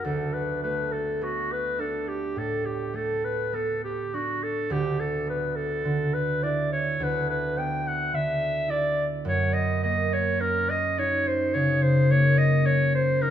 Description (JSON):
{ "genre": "classical, impressionist duo for clarinet and harp", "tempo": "53 BPM", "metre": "4/4", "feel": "rubato", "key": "D major", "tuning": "A4 = 440 Hz", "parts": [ { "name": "clear clarinet", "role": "melody", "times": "0.0-13.3 s", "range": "F#4 to G5", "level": "-26 LUFS", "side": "equal", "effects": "none" }, { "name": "concert harp", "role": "accompaniment", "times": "0.0-13.3 s", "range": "D2 to F#4", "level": "-26 LUFS", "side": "equal", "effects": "none" } ], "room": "wet recital hall reverb, RT60 1.8 s", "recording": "minimal, uncompressed stereo recording", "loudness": "-23 LUFS", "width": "side -10 dB against mid", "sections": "0.1-13.3 A section", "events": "none", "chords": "0.1 D6; 4.7 E5/D; 9.2 F#6", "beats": "| 0.05 1.22 2.37 3.53 | 4.70 5.84 6.99 8.12 | 9.24 10.40 11.54 12.65" }